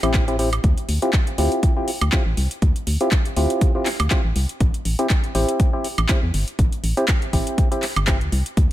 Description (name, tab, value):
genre	deep house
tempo	121 BPM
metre	4/4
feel	swing 55% on 16ths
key	unclear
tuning	A4 = 444 Hz
part	percussive organ stab	stabs	0.0-8.2 s	C4 to G4	-24 LUFS	equal	chorus, sidechain pumping, dub echo
part	organ-like FM bass	bass	0.0-8.7 s	G1 to E2	-21 LUFS	equal	sidechain pumping
part	deep house drum kit	drums	0.0-8.7 s	handclaps, hi-hat, woodblock	-26 LUFS	right 1 dB	overdrive
part	electronic kick drum	drums	0.1-8.7 s	none	-19 LUFS	equal	overdrive
room	little or no reverb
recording	none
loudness	-18 LUFS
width	side -14 dB against mid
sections	0.0-8.7 A section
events	none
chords	0.0 Am7; 0.6 Dm11; 4.6 Am7